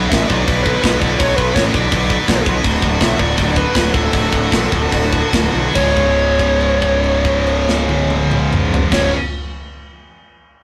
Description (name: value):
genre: heavy metal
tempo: 140-166 BPM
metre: 4/4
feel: straight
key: unclear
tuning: A4 = 440 Hz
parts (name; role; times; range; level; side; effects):
- heavy high-gain guitar; riff; 0.0-9.1 s; C#2 to B4; -24 LUFS; equal; distortion
- scooped high-gain guitar; riff; 0.0-9.1 s; C#2 to F#3; -25 LUFS; equal; distortion
- fuzz picked electric bass; bass; 0.0-9.1 s; C#1 to B1; -20 LUFS; equal; overdrive
- smooth overdriven lead guitar; melody; 0.1-9.1 s; A4 to E5; -22 LUFS; equal; none
- tight metal drum kit; drums; 0.1-9.0 s; crash cymbal, hi-hat, kick drum, snare drum, toms; -21 LUFS; equal; none
room: moderate small room reverb, RT60 0.5 s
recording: rough rehearsal-room recording, warm saturation, lossy compression artefacts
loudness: -15 LUFS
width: mono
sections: 0.0-5.7 A section; 5.7-9.2 B section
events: slowing down 2.6-5.7; drum fill 5.5; held note 5.7-8.9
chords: 0.0 Bm; 2.6 D; 5.7 C#5